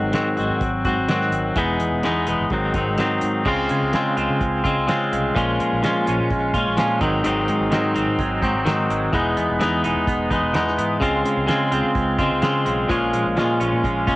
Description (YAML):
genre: indie rock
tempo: 127 BPM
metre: 4/4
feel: straight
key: Db major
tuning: A4 = 440 Hz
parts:
  - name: twangy electric guitar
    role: riff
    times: 0.0-14.2 s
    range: Ab2 to Gb4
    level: -19 LUFS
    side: left 1 dB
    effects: cassette tape
  - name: growling fingered electric bass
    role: bass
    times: 0.0-14.2 s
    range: E1 to Db3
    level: -27 LUFS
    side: right 1 dB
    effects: overdrive
  - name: cloth-damped thuddy drum kit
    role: drums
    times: 0.1-14.2 s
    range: crash cymbal, hi-hat, kick drum, snare drum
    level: -27 LUFS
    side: right 1 dB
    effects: cassette tape
  - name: clean electric guitar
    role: riff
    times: 3.5-14.2 s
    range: Eb3 to D#4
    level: -28 LUFS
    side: right 7 dB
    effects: analog chorus, cassette tape, tape echo
room: light reverb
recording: home recording on cassette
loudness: -18 LUFS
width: side -19 dB against mid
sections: 0.0-3.5 A section; 3.5-14.2 A section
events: none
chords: 0.0 Ab7; 1.6 Emaj7; 2.5 Ab7; 3.5 Dbmaj7; 5.4 Bbm7; 7.0 Ab7; 9.1 Emaj7; 11.0 Dbmaj7; 12.9 Bbm7